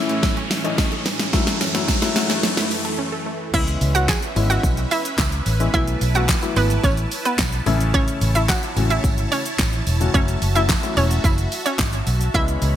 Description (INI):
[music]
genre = dance-pop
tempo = 109 BPM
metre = 4/4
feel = straight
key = C# minor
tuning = A4 = 438 Hz
[part]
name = warm grand piano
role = accompaniment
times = 0.0-12.8 s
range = C#3 to F#4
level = -26 LUFS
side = left 5 dB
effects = sidechain pumping
[part]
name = supersaw pad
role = sustained chords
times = 0.0-12.8 s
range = F#2 to B5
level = -29 LUFS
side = right 1 dB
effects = phaser, sidechain pumping
[part]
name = wide unison pluck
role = arpeggios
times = 0.0-3.4 s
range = A2 to A4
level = -31 LUFS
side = right 3 dB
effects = sidechain pumping, digital delay
[part]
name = riser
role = sound effects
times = 0.0-3.0 s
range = none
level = -26 LUFS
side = equal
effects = none
[part]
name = pop drum kit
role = drums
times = 0.1-12.7 s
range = crash cymbal, handclaps, hi-hat, kick drum, shaker, snare drum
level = -22 LUFS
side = equal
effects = gated reverb
[part]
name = tambourine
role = percussion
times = 0.2-12.7 s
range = none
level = -38 LUFS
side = right 8 dB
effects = none
[part]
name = hollow square pluck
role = melody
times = 3.5-12.5 s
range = B3 to G#5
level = -24 LUFS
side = right 2 dB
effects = chorus, digital delay
[part]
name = vintage muted fingered electric bass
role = bass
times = 3.5-12.8 s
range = E1 to C#2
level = -21 LUFS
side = equal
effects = sidechain pumping
[sound]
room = light reverb, digital ambience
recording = bright 1980s-style digital production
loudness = -17 LUFS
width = side -11 dB against mid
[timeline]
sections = 0.0-3.5 A section; 3.5-12.8 B section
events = build-up 0.0-3.5; drum fill 0.0-3.0; riser 0.0-3.5; break 3.0-3.5; drop 3.5-12.8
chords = 0.0 A; 1.3 F#m7; 3.5 C#m7; 7.7 A; 10.1 F#m7